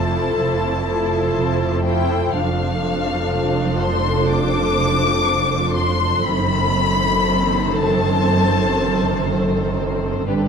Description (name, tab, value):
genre	classical, slow romantic movement for string orchestra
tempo	60 BPM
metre	4/4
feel	rubato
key	unclear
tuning	A4 = 443 Hz
part	warm symphonic violin section	melody	0.0-9.8 s	F5 to D6	-22 LUFS	left 5 dB	none
part	warm symphonic violin section	second line	0.0-10.5 s	G4 to C5	-23 LUFS	left 2 dB	none
part	warm symphonic viola section	accompaniment	0.0-10.5 s	D3 to E4	-24 LUFS	right 1 dB	none
part	rich symphonic cello section	bass	0.0-10.5 s	F2 to G2	-25 LUFS	right 2 dB	none
part	warm symphonic double bass section	bass	0.0-10.5 s	F1 to G1	-23 LUFS	right 3 dB	none
room	wet scoring stage reverb, RT60 1.6 s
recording	dark, warm production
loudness	-16 LUFS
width	side -6 dB against mid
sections	0.0-10.5 A section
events	none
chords	0.0 Fmaj7; 2.3 Dm7/F; 6.3 F#dim7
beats	0.38 1.35 | 2.35 3.33 4.28 5.25 | 6.25 7.25 8.25 9.27 | 10.28